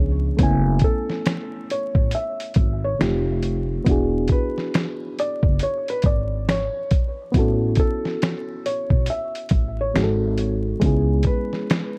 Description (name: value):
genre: lo-fi hip hop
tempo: 69 BPM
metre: 4/4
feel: swing 61% on 16ths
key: F# minor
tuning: A4 = 440 Hz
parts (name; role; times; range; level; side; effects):
- reed electric piano; accompaniment; 0.0-12.0 s; E#3 to G#5; -28 LUFS; equal; cassette tape, low-pass filter
- upright bass; bass; 0.0-11.2 s; E1 to C#2; -25 LUFS; equal; none
- lo-fi sampler-style drum kit; drums; 0.4-11.9 s; finger snaps, hi-hat, kick drum, snare drum; -23 LUFS; equal; none
- felt-muted upright piano; melody; 0.8-12.0 s; A4 to E5; -30 LUFS; equal; low-pass filter, analog delay
room: little or no reverb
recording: dark, warm production, vinyl crackle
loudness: -22 LUFS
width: mono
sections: 0.0-12.0 A section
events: break 0.0-0.4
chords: 0.4 F#m11; 3.0 F9; 3.9 E9; 7.3 A6; 9.9 G#7b9; 10.8 C#m7